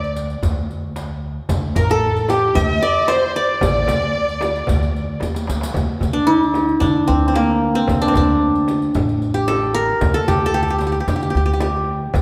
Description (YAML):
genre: Arabic maqam ensemble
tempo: 113 BPM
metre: 4/4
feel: straight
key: D maqam bayati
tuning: A4 = 440 Hz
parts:
  - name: qanun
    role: melody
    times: 0.0-12.2 s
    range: Bb3 to E5-50c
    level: -20 LUFS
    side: equal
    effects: none
  - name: dark violin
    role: second line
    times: 0.0-5.2 s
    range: G4 to Eb5+45c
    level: -25 LUFS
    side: equal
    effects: none
  - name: warm studio violin section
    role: second line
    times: 0.0-5.2 s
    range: G4 to E5-50c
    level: -28 LUFS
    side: equal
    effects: none
  - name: upright bass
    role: bass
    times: 0.0-12.2 s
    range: A1 to D3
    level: -24 LUFS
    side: equal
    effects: none
  - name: riq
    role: percussion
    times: 0.0-12.2 s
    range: none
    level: -34 LUFS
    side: equal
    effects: none
  - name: darbuka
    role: percussion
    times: 0.3-12.2 s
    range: none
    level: -28 LUFS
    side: equal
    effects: none
  - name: frame drum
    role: percussion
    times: 1.5-12.2 s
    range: none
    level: -29 LUFS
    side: equal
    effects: none
room: moderate concert hall reverb, RT60 1.7 s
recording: none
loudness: -18 LUFS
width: mono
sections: 0.0-5.8 A section; 5.8-12.2 B section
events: drum fill 5.2-5.8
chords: none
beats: 0.43 0.96 | 1.49 2.02 2.56 3.09 | 3.62 4.16 4.69 5.22 | 5.75 6.29 6.82 7.35 | 7.89 8.42 8.95 9.49 | 10.02 10.55 11.08 11.62 | 12.15